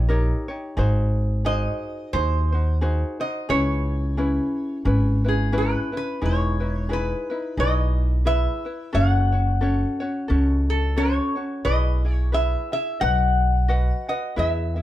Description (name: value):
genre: Hawaiian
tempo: 88 BPM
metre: 4/4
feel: swing 58% on 8ths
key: C# minor, E major from 6.2 s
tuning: A4 = 440 Hz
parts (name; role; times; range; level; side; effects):
- lap resonator guitar; melody; 0.0-14.8 s; G#4 to F#5; -26 LUFS; left 1 dB; none
- ukulele; accompaniment; 0.0-14.8 s; C#4 to F#5; -27 LUFS; left 1 dB; none
- upright bass; bass; 0.0-14.8 s; E1 to E2; -21 LUFS; equal; none
room: light reverb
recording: none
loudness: -20 LUFS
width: side -13 dB against mid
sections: 0.0-6.2 A section; 6.2-14.8 B section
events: none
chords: 0.0 D#7; 0.8 G#7; 3.5 C#m7; 6.2 Emaj7; 8.9 F#m; 11.7 E/B; 13.0 B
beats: 0.10 | 0.78 1.46 2.14 2.82 | 3.50 4.18 4.86 5.54 | 6.22 6.90 7.58 8.26 | 8.94 9.62 10.30 10.98 | 11.66 12.34 13.02 13.70 | 14.38